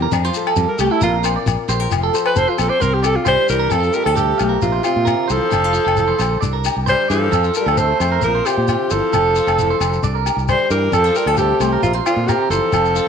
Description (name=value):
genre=highlife guitar band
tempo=133 BPM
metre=4/4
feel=straight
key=F major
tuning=A4 = 440 Hz
part: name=nylon-string guitar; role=accompaniment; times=0.0-13.1 s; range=Bb2 to Bb4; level=-26 LUFS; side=left 10 dB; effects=none
part: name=clean electric guitar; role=arpeggios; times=0.0-13.1 s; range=F4 to F5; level=-21 LUFS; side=right 11 dB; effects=slapback echo
part: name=modern bright fingered electric bass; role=bass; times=0.0-13.0 s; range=F1 to Bb2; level=-21 LUFS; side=equal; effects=none
part: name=agogo bells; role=percussion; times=0.1-12.8 s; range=none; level=-26 LUFS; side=left 14 dB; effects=none
part: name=shekere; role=percussion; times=0.1-13.1 s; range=none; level=-26 LUFS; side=left 4 dB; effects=none
part: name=breathy alto saxophone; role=melody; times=0.7-13.1 s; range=E4 to C5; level=-18 LUFS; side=right 1 dB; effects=slapback echo
part: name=growling tenor saxophone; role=second line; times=3.3-13.1 s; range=C3 to A3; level=-25 LUFS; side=left 8 dB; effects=none
room=moderate echo chamber reverb, RT60 1.5 s, studio reverb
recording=1960s-style stereo with parts hard left and right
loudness=-14 LUFS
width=side -7 dB against mid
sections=0.0-3.7 A section; 3.7-13.1 B section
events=alto saxophone solo 0.0-3.7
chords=0.1 F; 1.0 Bbsus2; 1.9 F; 2.8 Cadd9; 3.7 F; 4.6 Bbsus2; 5.5 F; 6.4 Cadd9; 7.3 F; 8.2 Bbsus2; 9.1 F; 10.0 Cadd9; 10.9 F; 11.8 Bbsus2